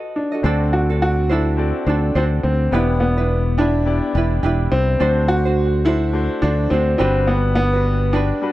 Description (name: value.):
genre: acoustic pop.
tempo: 105 BPM.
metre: 4/4.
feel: swing 60% on 16ths.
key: unclear.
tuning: A4 = 439 Hz.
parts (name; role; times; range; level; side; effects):
tenor ukulele; accompaniment; 0.0-8.5 s; D4 to D#5; -25 LUFS; right 5 dB; none.
clear upright piano; melody; 0.2-8.5 s; B3 to F#4; -20 LUFS; equal; analog delay.
warm concert grand piano; accompaniment; 0.4-8.5 s; G3 to D5; -27 LUFS; left 5 dB; none.
fingered electric bass; bass; 0.4-8.3 s; E1 to D2; -18 LUFS; equal; none.
room: light reverb, studio reverb.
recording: dark, warm production.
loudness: -16 LUFS.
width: side -16 dB against mid.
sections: 0.4-8.5 A section.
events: none.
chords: 0.4 D7; 2.7 Em7; 5.0 D7; 7.0 Gmaj7.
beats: | 0.44 1.01 1.58 2.15 | 2.72 3.29 3.86 4.43 | 5.00 5.57 6.14 6.71 | 7.28 7.85 8.43.